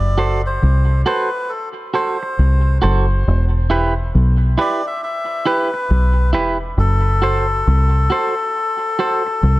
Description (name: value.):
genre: dub reggae.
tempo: 68 BPM.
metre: 4/4.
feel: swing 64% on 16ths.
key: unclear.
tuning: A4 = 444 Hz.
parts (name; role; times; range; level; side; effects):
melodica; melody; 0.0-9.6 s; A4 to E5; -22 LUFS; left 2 dB; dub echo.
deep dub fingered electric bass; bass; 0.0-9.6 s; E1 to C2; -14 LUFS; equal; none.
clean electric guitar; accompaniment; 0.2-9.3 s; E4 to C5; -22 LUFS; right 3 dB; dub echo.
room: light reverb, small room reverb.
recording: dark, warm production.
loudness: -15 LUFS.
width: side -18 dB against mid.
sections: 0.0-9.6 A section.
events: none.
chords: 0.0 F#dim; 3.3 Em; 6.8 F#dim.